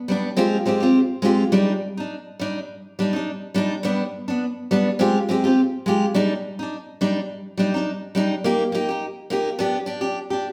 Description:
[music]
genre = highlife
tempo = 104 BPM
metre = 4/4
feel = swing 54% on 16ths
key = unclear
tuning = A4 = 440 Hz
[part]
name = picked steel-string acoustic guitar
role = solo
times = 0.1-10.5 s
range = G3 to G4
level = -22 LUFS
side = equal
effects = none
[sound]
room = wet large studio reverb, RT60 1.2 s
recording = band playing live in one room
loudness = -22 LUFS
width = mono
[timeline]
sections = 0.0-8.4 A section; 8.4-10.5 B section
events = none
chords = 0.4 Fmadd9; 1.5 Ebmaj7/G; 3.8 G; 5.0 Fmadd9; 6.1 Ebmaj7/G; 8.4 Eb/Bb; 9.6 G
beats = 0.39 0.96 | 1.54 2.11 2.69 3.26 | 3.84 4.41 4.99 5.56 | 6.14 6.71 7.29 7.86 | 8.44 9.01 9.58 10.16

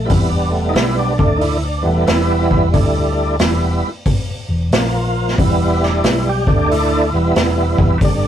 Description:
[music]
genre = blues rock power trio and southern rock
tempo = 91 BPM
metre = 4/4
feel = swing 65% on 8ths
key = E minor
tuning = A4 = 444 Hz
[part]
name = overdriven tonewheel organ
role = sustained chords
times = 0.0-8.3 s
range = D3 to G4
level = -17 LUFS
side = right 1 dB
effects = slow rotary speaker, chorus vibrato
[part]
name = hollow-body short-scale fingered electric bass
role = bass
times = 0.0-8.3 s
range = E1 to D2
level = -19 LUFS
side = left 1 dB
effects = none
[part]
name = vintage drum kit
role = drums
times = 0.1-8.2 s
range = hi-hat, kick drum, snare drum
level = -18 LUFS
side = equal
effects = none
[sound]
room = moderate booth ambience, RT60 0.2 s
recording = rough rehearsal-room recording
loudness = -13 LUFS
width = side -10 dB against mid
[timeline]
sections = 0.0-8.3 A section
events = tonewheel organ solo 0.0-8.3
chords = 0.1 Em; 1.1 D5; 1.8 Em; 2.7 D5; 3.4 Em; 4.7 A#5; 5.4 Em; 6.4 D5; 7.0 Em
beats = | 0.11 0.77 1.43 2.09 | 2.75 3.41 4.07 4.72 | 5.38 6.04 6.70 7.36 | 8.01

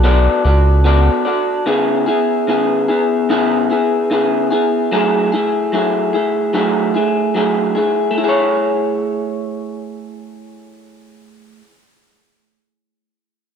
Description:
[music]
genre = indie pop, bedroom pop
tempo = 74 BPM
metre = 4/4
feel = swing 55% on 16ths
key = A major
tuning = A4 = 440 Hz
[part]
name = electric guitar through a small old amp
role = accompaniment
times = 0.0-11.8 s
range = C#3 to D5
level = -14 LUFS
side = equal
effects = wide subtle chorus, vibrato effect
[part]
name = round analog bass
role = bass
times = 0.0-1.1 s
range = B1 to C#2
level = -11 LUFS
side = equal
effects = none
[sound]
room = light reverb, digital ambience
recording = none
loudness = -13 LUFS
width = side -7 dB against mid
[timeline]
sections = 0.0-8.2 A section; 8.2-11.4 B section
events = none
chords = 0.0 Bm7; 1.7 C#m7; 4.9 F#m9; 8.2 Amaj7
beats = 0.04 0.86 | 1.67 2.48 3.29 4.10 | 4.92 5.73 6.54 7.35 | 8.16 8.98 9.79 10.60

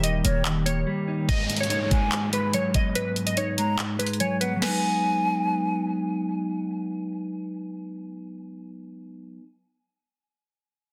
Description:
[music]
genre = hip hop, trap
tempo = 144 BPM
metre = 4/4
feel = half-time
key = G# minor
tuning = A4 = 440 Hz
[part]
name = glassy wavetable pluck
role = melody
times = 0.0-5.8 s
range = B4 to D#5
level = -33 LUFS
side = equal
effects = chorus, low-pass filter
[part]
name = mellow electric guitar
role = accompaniment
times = 0.0-9.4 s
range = G#2 to D#5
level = -30 LUFS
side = equal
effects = low-pass filter
[part]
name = deep dark ambient pad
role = sustained chords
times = 0.0-1.3 s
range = D#3 to G4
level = -40 LUFS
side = equal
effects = chorus, built-in reverb
[part]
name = hard-hitting 808-style bass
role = bass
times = 0.0-0.8 s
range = D#1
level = -29 LUFS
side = equal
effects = none
[part]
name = trap drum kit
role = drums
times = 0.0-4.7 s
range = crash cymbal, handclaps, hi-hat, kick drum, snare drum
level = -29 LUFS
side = equal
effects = none
[part]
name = hollow concert flute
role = second line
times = 0.2-5.8 s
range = C#5 to B5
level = -32 LUFS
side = equal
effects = tape echo
[part]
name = downlifter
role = sound effects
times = 1.3-4.6 s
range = none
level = -38 LUFS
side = equal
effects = none
[sound]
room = light reverb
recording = dense, heavily limited modern master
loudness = -26 LUFS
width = mono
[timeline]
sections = 0.0-1.3 A section; 1.3-4.6 B section; 4.6-8.0 C section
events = drums muted 0.9-1.3; filter sweep 1.3-4.6; kick muted 3.8-4.6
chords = 0.0 D#; 1.3 G#m7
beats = 0.04 0.45 0.87 | 1.29 1.70 2.12 2.54 | 2.95 3.37 3.79 4.20 | 4.62 5.04 5.45 5.87 | 6.29 6.70 7.12 7.54

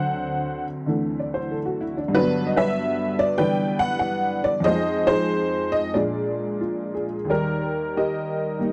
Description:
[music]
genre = solo jazz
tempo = 94 BPM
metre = 4/4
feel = swing 69% on 8ths, rubato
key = unclear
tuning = A4 = 440 Hz
[part]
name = honky-tonk upright piano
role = solo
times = 0.0-8.7 s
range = D2 to G5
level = -24 LUFS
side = equal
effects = none
[sound]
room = light reverb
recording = dry, close 1970s-style studio recording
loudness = -24 LUFS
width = mono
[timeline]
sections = 0.0-7.3 A section; 7.3-8.7 A section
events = none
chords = 0.0 D7; 2.1 Gmaj7; 4.7 Fm7; 6.0 Bb7; 7.3 Ebmaj7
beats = 0.23 0.87 1.51 | 2.14 2.76 3.39 4.03 | 4.67 5.31 5.96 6.63 | 7.30 7.96 8.61

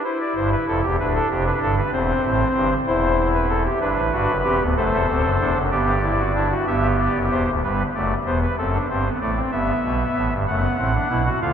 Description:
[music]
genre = classical, baroque-style 4-part fugue for pipe organ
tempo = 64 BPM (dotted quarters)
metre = 6/8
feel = straight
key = unclear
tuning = A4 = 439 Hz
[part]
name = pipe organ, soft reed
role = solo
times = 0.0-11.5 s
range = D1 to F#5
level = -18 LUFS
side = equal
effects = none
[sound]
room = wet cathedral reverb, RT60 5.7 s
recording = dark, warm production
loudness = -18 LUFS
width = side -8 dB against mid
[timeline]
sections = 0.0-7.6 A section; 7.6-11.5 B section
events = none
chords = 0.0 C; 1.0 G7/D; 1.9 C/E; 3.8 G; 4.8 D7; 5.7 G; 8.6 F#dim; 9.5 Em/G; 10.5 D/F#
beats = | 0.04 0.99 | 1.93 2.87 | 3.81 4.76 | 5.71 6.66 | 7.62 8.58 | 9.53 10.47 | 11.41

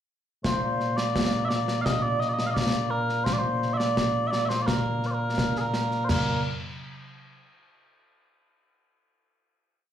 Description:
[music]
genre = scottish traditional, Scottish pipe music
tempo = 85 BPM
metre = 2/4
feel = straight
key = Bb major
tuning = A4 = 440 Hz
[part]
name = mellow small bagpipes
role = melody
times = 0.4-6.4 s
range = Bb2 to F5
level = -25 LUFS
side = equal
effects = slapback echo
[part]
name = concert snare drum, concert bass drum, concert toms and clash cymbals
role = drums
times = 0.4-6.3 s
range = none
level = -29 LUFS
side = equal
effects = slapback echo
[sound]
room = moderate club reverb, RT60 0.6 s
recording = live gig heard through the venue's PA, club reverb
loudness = -24 LUFS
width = side -10 dB against mid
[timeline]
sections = 0.4-6.1 A section; 6.1-7.5 final note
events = none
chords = none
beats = | 0.44 1.15 | 1.86 2.56 | 3.27 3.97 | 4.68 5.38 | 6.09

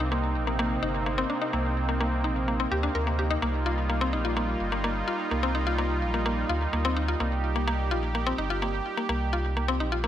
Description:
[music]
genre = IDM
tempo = 127 BPM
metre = 4/4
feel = straight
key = unclear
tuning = A4 = 439 Hz
[part]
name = warm analog pad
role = sustained chords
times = 0.0-10.1 s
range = C3 to G4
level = -30 LUFS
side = right 2 dB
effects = chorus
[part]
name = mallet-like synth pluck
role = arpeggios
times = 0.0-10.1 s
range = Bb3 to Bb4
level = -29 LUFS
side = left 3 dB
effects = chorus, digital delay
[part]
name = warm sub bass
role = bass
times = 0.0-10.1 s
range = G1 to D2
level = -29 LUFS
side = equal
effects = none
[sound]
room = light reverb, digital ambience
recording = none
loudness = -25 LUFS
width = side -11 dB against mid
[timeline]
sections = 0.0-10.1 A section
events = none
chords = 0.0 Cm9; 3.4 F9sus4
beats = 0.12 0.59 1.06 | 1.53 2.01 2.48 2.95 | 3.42 3.90 4.37 4.84 | 5.31 5.79 6.26 6.73 | 7.20 7.68 8.15 8.62 | 9.09 9.57 10.04

